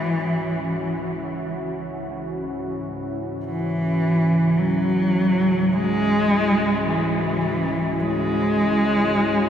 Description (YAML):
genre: dark ambient drone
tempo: free time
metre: none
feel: none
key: unclear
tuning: A4 = 441 Hz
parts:
  - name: dark cello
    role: melody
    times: 0.0-9.5 s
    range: E3 to G#3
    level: -20 LUFS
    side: equal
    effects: tape echo
  - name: deep dark ambient pad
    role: sustained chords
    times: 0.0-9.5 s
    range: C#4 to F#4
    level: -27 LUFS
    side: left 1 dB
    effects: chorus, built-in reverb
  - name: bowed-like drone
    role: drone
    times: 0.0-9.5 s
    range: C#2 to G#2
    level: -34 LUFS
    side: equal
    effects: built-in reverb
room: wet huge ambient reverb, RT60 7.7 s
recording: dreamy mix soaked in reverb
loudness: -19 LUFS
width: side -9 dB against mid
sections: 0.0-9.5 A section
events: fade-in on synth drone 0.0-9.5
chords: 0.0 C#m